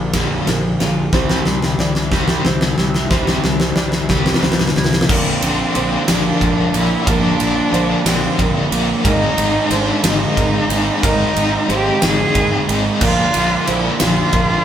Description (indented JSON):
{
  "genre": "post-rock",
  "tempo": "61 BPM (dotted quarters)",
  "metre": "6/8",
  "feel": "straight",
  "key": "unclear",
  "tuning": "A4 = 438 Hz",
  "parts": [
    { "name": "hand-pumped harmonium", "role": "sustained chords", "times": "0.0-14.6 s", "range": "Eb3 to C6", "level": "-30 LUFS", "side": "equal", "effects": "none" },
    { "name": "clean electric guitar", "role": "arpeggios", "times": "0.0-5.1 s", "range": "Bb2 to F4", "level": "-29 LUFS", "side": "left 1 dB", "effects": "none" },
    { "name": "felt-muted upright piano", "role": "arpeggios", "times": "0.0-14.6 s", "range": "Bb4 to D5", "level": "-29 LUFS", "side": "right 3 dB", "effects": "none" },
    { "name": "fuzz fingered electric bass", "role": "bass", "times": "0.0-14.5 s", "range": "Ab1 to C2", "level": "-23 LUFS", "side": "equal", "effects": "overdrive" },
    { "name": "crunchy overdriven guitar", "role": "riff", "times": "0.1-14.6 s", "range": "Ab2 to F4", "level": "-21 LUFS", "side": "right 5 dB", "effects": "none" },
    { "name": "overdriven electric guitar", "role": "riff", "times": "0.1-14.6 s", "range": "Ab2 to F4", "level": "-22 LUFS", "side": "left 5 dB", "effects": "tremolo" },
    { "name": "huge arena drum kit", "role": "drums", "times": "0.1-14.5 s", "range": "crash cymbal, kick drum, ride cymbal, snare drum", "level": "-18 LUFS", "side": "left 1 dB", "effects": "none" },
    { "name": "warm cello", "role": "melody", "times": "5.1-14.6 s", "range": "C4 to Ab4", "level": "-20 LUFS", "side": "right 1 dB", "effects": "none" }
  ],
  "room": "wet studio reverb, RT60 0.6 s",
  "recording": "band playing live in one room",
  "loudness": "-14 LUFS",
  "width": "side -10 dB against mid",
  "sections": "0.0-5.1 A section; 5.1-14.6 B section",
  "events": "build-up 0.0-5.1; drum fill 0.0-5.1",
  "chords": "0.0 Bbadd9; 1.1 C; 5.1 Bbadd9; 9.1 Abadd9; 13.0 Bbadd9",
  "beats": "0.14 | 1.13 2.12 | 3.11 4.10 | 5.09 6.08 | 7.07 8.06 | 9.05 10.04 | 11.03 12.02 | 13.01 14.01"
}